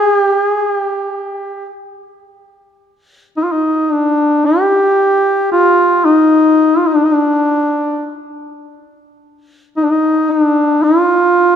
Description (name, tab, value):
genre	caucasian folk, Caucasian lament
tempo	56 BPM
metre	3/4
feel	rubato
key	unclear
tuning	A4 = 443 Hz
part	mellow duduk	solo	0.0-11.6 s	D4 to G4	-11 LUFS	equal	none
room	wet church reverb, RT60 3.1 s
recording	minimal, uncompressed stereo recording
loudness	-11 LUFS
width	side -8 dB against mid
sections	0.0-2.3 A section; 2.3-11.6 B section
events	none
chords	none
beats	1.12 | 2.26 3.37 4.45 | 5.52 6.58 7.63 | 8.69 9.75 10.83